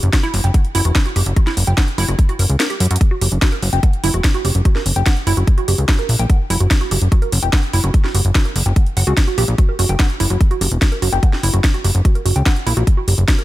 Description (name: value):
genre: psychedelic trance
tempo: 146 BPM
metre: 4/4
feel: straight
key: unclear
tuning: A4 = 440 Hz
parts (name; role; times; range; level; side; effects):
- plucky analog bass; bass; 0.0-13.2 s; E1 to F#2; -15 LUFS; equal; none
- drum and bass drum kit; drums; 0.0-13.4 s; hi-hat, snare drum; -21 LUFS; equal; overdrive
- woody wave-folded pluck; riff; 0.1-13.4 s; E4 to G5; -24 LUFS; moving between left 2 dB and right 5 dB; chorus, auto-pan, sidechain pumping, tape echo
- electronic kick drum; drums; 0.1-13.4 s; none; -14 LUFS; equal; none
room: little or no reverb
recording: none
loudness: -13 LUFS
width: side -16 dB against mid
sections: 0.0-13.4 A section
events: filter sweep on synth arpeggio sound 0.0-13.4; kick drops out 2.6-3.0; drum fill 2.8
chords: 0.0 F#5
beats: 0.13 0.54 0.95 | 1.36 1.78 2.19 2.60 | 3.01 3.42 3.83 4.24 | 4.65 5.06 5.47 5.89 | 6.30 6.71 7.12 7.53 | 7.94 8.35 8.76 9.17 | 9.58 9.99 10.41 10.82 | 11.23 11.64 12.05 12.46 | 12.87 13.28